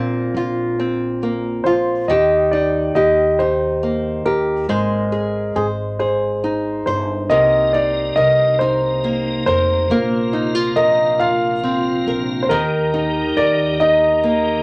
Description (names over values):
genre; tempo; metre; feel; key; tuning
six-eight pop ballad; 46 BPM (dotted quarters); 6/8; straight; unclear; A4 = 440 Hz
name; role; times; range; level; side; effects
warm concert grand piano; melody; 0.0-14.6 s; Ab4 to F5; -20 LUFS; equal; none
nylon-string guitar; accompaniment; 0.0-14.6 s; Bb2 to C5; -22 LUFS; equal; none
upright bass; bass; 0.0-14.6 s; F1 to Eb2; -30 LUFS; equal; none
tonewheel organ; sustained chords; 7.3-14.6 s; C3 to G4; -28 LUFS; equal; chorus vibrato, slow rotary speaker
room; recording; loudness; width
moderate studio reverb, RT60 0.6 s; none; -18 LUFS; mono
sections
0.0-14.6 A section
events
none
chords
0.0 Bbsus2; 2.1 Eb; 4.7 Abadd9; 7.3 Cm7; 9.9 Bbsus2; 12.5 Eb